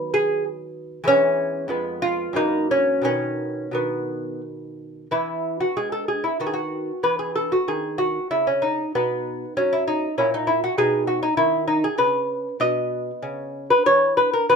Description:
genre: classical, baroque-style dance for lute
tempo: 85-100 BPM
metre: 3/4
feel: rubato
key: B major, E major from 5.1 s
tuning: A4 = 440 Hz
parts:
  - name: lute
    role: solo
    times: 0.0-14.6 s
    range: E#2 to D#5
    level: -20 LUFS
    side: equal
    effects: none
room: light reverb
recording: minimal, uncompressed stereo recording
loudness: -20 LUFS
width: side -5 dB against mid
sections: 0.0-5.1 A section; 5.1-14.6 A section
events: none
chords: 0.0 B/D#; 1.1 C#m7/E; 1.7 C#7/E# (rootless); 2.4 F#7; 3.1 B; 5.1 E; 6.4 B/D#; 7.0 E5; 8.9 B; 10.2 A#dim; 10.8 B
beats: 0.44 | 1.07 1.71 2.37 | 3.05 3.75 4.44 | 5.12 5.77 6.40 | 7.03 7.66 8.30 | 8.93 9.55 10.17 | 10.78 11.39 12.00 | 12.61 13.23 13.86 | 14.48

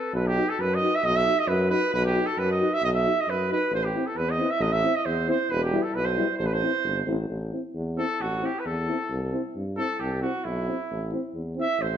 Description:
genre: balkan folk, Balkan brass band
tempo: 134 BPM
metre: 2/4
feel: straight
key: A dorian sharp4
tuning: A4 = 440 Hz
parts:
  - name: warm trumpet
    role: melody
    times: 0.0-12.0 s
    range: E4 to E5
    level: -26 LUFS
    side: right 3 dB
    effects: none
  - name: warm tuba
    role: bass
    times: 0.1-12.0 s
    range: E1 to G2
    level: -28 LUFS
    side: equal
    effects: none
  - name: mellow euphonium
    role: accompaniment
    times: 0.4-11.7 s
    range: E4 to F#4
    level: -32 LUFS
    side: left 6 dB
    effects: none
  - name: warm euphonium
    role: accompaniment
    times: 0.4-11.7 s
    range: G3 to D#4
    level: -34 LUFS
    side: right 4 dB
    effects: none
room: wet recital hall reverb, RT60 1.3 s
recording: dark, warm production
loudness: -23 LUFS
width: side -9 dB against mid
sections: 0.1-7.3 A section; 7.3-12.0 B section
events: trumpet solo 7.3-12.0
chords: 0.1 B; 3.7 Am; 5.5 Em; 6.4 Am; 9.1 C; 10.9 Am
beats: | 0.14 0.59 | 1.03 1.48 | 1.93 2.38 | 2.82 3.27 | 3.71 4.16 | 4.61 5.05 | 5.50 5.95 | 6.39 6.84 | 7.29 7.74 | 8.19 8.64 | 9.09 9.54 | 9.99 10.44 | 10.89 11.34 | 11.79

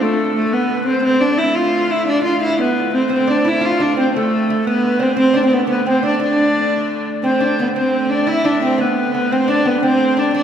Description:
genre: medieval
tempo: 116 BPM (dotted quarters)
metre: 6/8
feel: straight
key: D dorian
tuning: A4 = 439 Hz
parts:
  - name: warm viola da gamba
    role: melody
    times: 0.0-10.4 s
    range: A3 to F4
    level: -15 LUFS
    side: equal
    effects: none
  - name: bright reedy tenor recorder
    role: second line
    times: 0.0-10.4 s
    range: A4 to F5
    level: -24 LUFS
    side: left 4 dB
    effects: none
  - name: clear hurdy-gurdy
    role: drone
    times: 0.0-10.4 s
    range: D3 to A3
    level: -25 LUFS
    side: right 3 dB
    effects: none
  - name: lute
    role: second line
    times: 3.1-10.4 s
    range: A3 to F4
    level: -23 LUFS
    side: right 2 dB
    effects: none
room: wet concert hall reverb, RT60 2.2 s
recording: heard from further back in the room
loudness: -14 LUFS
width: side -8 dB against mid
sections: 0.0-7.2 A section; 7.2-10.4 B section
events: none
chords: none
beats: | 0.01 0.53 | 1.05 1.57 | 2.08 2.60 | 3.12 3.63 | 4.15 4.67 | 5.18 5.70 | 6.21 6.73 | 7.25 7.76 | 8.28 8.79 | 9.31 9.82 | 10.34

